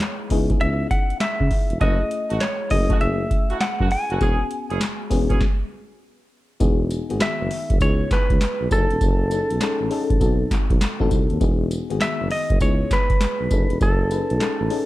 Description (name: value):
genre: R&B, new jack swing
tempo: 100 BPM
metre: 4/4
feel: swing 64% on 16ths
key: F# dorian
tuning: A4 = 442 Hz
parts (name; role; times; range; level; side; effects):
- semi-hollow electric guitar; melody; 0.0-14.9 s; A4 to G#5; -25 LUFS; right 1 dB; spring reverb, slapback echo, plate reverb
- FM electric piano with auto-pan; accompaniment; 0.0-14.9 s; D#3 to G#5; -27 LUFS; left 5 dB; plate reverb
- booming analog drum machine; drums; 0.0-14.9 s; handclaps, hi-hat, kick drum, snare drum, tambourine; -21 LUFS; equal; none
- mellow tuba; bass; 0.3-14.7 s; E1 to C#3; -24 LUFS; equal; none
- warm horn section; stabs; 1.8-5.4 s; A3 to G#4; -31 LUFS; right 5 dB; slapback echo
room: little or no reverb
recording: dark, warm production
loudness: -18 LUFS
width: side -16 dB against mid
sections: 0.0-6.6 A section; 6.6-14.9 B section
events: stop 5.4-6.6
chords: 0.0 C#m7; 1.8 F#m7; 4.2 E6; 6.6 Emaj9; 7.8 C#m9; 8.7 F#m69; 10.2 B7b9; 11.4 Emaj9; 12.6 C#m9; 13.5 F#m69